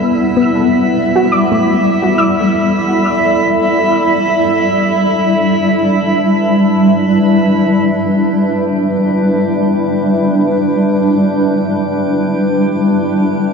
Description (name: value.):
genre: ambient.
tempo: free time.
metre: none.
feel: none.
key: E minor.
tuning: A4 = 440 Hz.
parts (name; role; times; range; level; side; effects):
granular cloud pad; sustained chords; 0.0-13.5 s; E2 to E5; -12 LUFS; equal; built-in reverb.
soft round pluck; arpeggios; 0.0-5.5 s; C3 to E6; -17 LUFS; equal; ensemble chorus, diffuse ambient delay.
drifting glass-harmonics texture; texture; 0.0-13.5 s; E4 to G5; -19 LUFS; right 2 dB; chorus, built-in reverb.
room: wet cathedral reverb, RT60 6.0 s.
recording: worn, warbling old tape, cassette tape, warbly pitch drift.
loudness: -11 LUFS.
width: side -5 dB against mid.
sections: 0.0-7.9 A section; 7.9-13.5 B section.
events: none.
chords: 0.0 Am7/E; 3.3 Em7.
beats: free time.